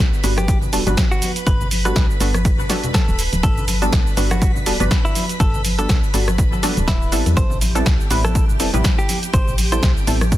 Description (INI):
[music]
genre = deep house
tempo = 122 BPM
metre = 4/4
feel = swing 57% on 16ths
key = G major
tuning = A4 = 440 Hz
[part]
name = filtered dub chord stab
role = stabs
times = 0.0-10.2 s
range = G3 to B4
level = -24 LUFS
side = equal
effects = analog chorus, sidechain pumping, tape echo
[part]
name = woody FM bass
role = bass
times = 0.0-10.4 s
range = D1 to E2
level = -21 LUFS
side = equal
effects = tube saturation, sidechain pumping
[part]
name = string machine, violins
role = texture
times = 0.0-10.4 s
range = G4 to B5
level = -31 LUFS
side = equal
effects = ensemble chorus, sidechain pumping
[part]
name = punchy analog drum machine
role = drums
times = 0.1-10.4 s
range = hi-hat, rim click, shaker, snare drum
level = -24 LUFS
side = right 1 dB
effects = none
[part]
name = direct-recorded clean electric guitar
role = melody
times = 0.4-9.9 s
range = E4 to C5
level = -28 LUFS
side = left 1 dB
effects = vintage 12-bit sampler grit, ping-pong delay
[part]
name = congas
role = percussion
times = 0.4-10.3 s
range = none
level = -27 LUFS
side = left 1 dB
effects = sidechain pumping on perc
[part]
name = electronic kick drum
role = drums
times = 0.5-10.4 s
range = none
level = -18 LUFS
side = equal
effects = none
[sound]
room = little or no reverb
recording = dense, heavily limited modern master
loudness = -15 LUFS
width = side -14 dB against mid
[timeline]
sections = 0.0-10.4 A section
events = none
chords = 0.0 Gmaj9; 7.1 Am9